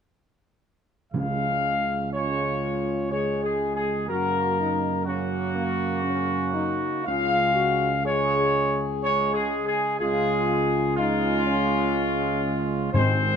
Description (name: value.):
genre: classical, ceremonial fanfare.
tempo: 61 BPM.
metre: 3/4.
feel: straight.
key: Db major.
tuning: A4 = 440 Hz.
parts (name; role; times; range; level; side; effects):
dark trumpet section; melody; 1.1-13.4 s; F4 to F5; -25 LUFS; left 1 dB; none.
bright trombone section; sustained chords; 1.1-13.4 s; Db3 to Bb3; -32 LUFS; right 3 dB; none.
dark tuba; bass; 1.1-13.4 s; Ab1 to Gb2; -29 LUFS; right 5 dB; none.
timpani; percussion; 1.1-2.6, 12.9-13.4 s; Ab2 to Db3; -27 LUFS; left 1 dB; none.
warm French horn section; sustained chords; 2.1-13.4 s; Bb3 to Ab4; -29 LUFS; left 6 dB; none.
room: light reverb.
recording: close, detailed microphones.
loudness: -22 LUFS.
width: side -7 dB against mid.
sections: 1.1-13.4 A section.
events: none.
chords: 1.1 Db; 4.1 Gb; 7.1 Db.